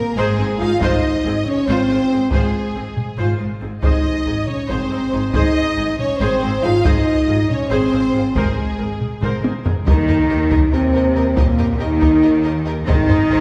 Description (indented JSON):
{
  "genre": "cinematic, epic orchestral film score",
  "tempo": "278 BPM (eighths)",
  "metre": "7/8",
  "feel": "straight",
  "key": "Ab major",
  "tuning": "A4 = 441 Hz",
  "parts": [
    { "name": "warm symphonic violin section", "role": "melody", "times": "0.0-13.4 s", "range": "Ab4 to F5", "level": "-33 LUFS", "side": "equal", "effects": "none" },
    { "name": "warm symphonic violin section", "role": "second line", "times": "0.0-13.4 s", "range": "Ab4 to F5", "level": "-30 LUFS", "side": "equal", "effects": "none" },
    { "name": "dark French horn section", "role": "sustained chords", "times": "0.0-13.4 s", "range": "Ab3 to F4", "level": "-21 LUFS", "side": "equal", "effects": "none" },
    { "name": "rich symphonic viola section", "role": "accompaniment", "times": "0.2-13.4 s", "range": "Ab3 to C5", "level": "-29 LUFS", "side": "equal", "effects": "none" },
    { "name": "rich symphonic cello section", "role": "bass", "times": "0.2-13.4 s", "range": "Ab2 to Eb3", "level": "-28 LUFS", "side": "equal", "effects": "none" },
    { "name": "rich symphonic double bass section", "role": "bass", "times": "0.2-13.4 s", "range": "Ab1 to Eb2", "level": "-26 LUFS", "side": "equal", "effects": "none" },
    { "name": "taiko ensemble", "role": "drums", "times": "0.8-13.3 s", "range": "none", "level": "-22 LUFS", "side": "equal", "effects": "none" },
    { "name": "timpani", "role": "percussion", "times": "0.8-1.4, 3.8-4.4, 8.4-10.5, 12.9-13.4 s", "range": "Ab2 to Eb3", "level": "-33 LUFS", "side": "equal", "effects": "none" }
  ],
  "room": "wet scoring stage reverb, RT60 1.6 s",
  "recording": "heard from further back in the room",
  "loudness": "-17 LUFS",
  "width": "mono",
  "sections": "0.0-9.9 A section; 9.9-13.4 B section",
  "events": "drum fill 9.2-9.9",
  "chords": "0.0 Ab; 0.8 Fm/Ab; 8.4 Abadd9; 9.9 Eb; 12.9 Ab"
}